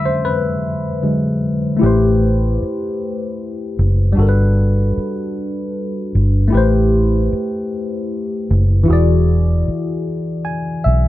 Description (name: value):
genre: R&B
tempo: 51 BPM (dotted quarters)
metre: 6/8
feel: straight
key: A dorian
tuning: A4 = 440 Hz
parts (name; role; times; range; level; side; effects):
- tine electric piano; accompaniment; 0.0-11.1 s; D3 to G#5; -18 LUFS; left 1 dB; phaser
- vintage muted fingered electric bass; bass; 1.8-11.1 s; E1 to B1; -14 LUFS; equal; none
room: light reverb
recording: dark, warm production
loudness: -15 LUFS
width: side -15 dB against mid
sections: 0.0-1.8 A section; 1.8-11.1 B section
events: tine electric piano solo 0.0-1.8; stop 0.0-1.8; tine electric piano fill 10.0-11.1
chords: 0.0 E9/D; 1.8 Am9; 4.2 Gmaj7; 6.5 Am9; 8.9 E9